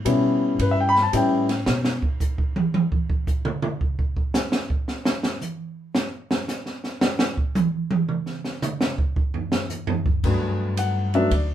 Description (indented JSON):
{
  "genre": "jazz piano trio",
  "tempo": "112 BPM",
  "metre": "4/4",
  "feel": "swing 68% on 8ths",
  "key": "G major",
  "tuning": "A4 = 440 Hz",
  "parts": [
    { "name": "upright bass", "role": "bass", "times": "0.0-2.0, 10.2-11.5 s", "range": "D2 to B2", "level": "-24 LUFS", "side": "equal", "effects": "none" },
    { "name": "warm grand piano", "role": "melody", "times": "0.1-1.6, 10.2-11.5 s", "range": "F#3 to B5", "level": "-20 LUFS", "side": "left 2 dB", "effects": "none" },
    { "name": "open jazz drum kit", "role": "drums", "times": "0.1-11.5 s", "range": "crash cymbal, hi-hat, kick drum, ride cymbal, snare drum, toms", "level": "-23 LUFS", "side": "right 2 dB", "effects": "none" }
  ],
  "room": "wet studio reverb, RT60 0.5 s",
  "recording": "band playing live in one room",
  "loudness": "-21 LUFS",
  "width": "side -11 dB against mid",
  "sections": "0.0-10.2 A section; 10.2-11.5 B section",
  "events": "grand piano solo 0.0-10.2; drum solo 1.7-10.2",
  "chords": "0.0 A9; 1.7 N.C.; 10.2 Gmaj9"
}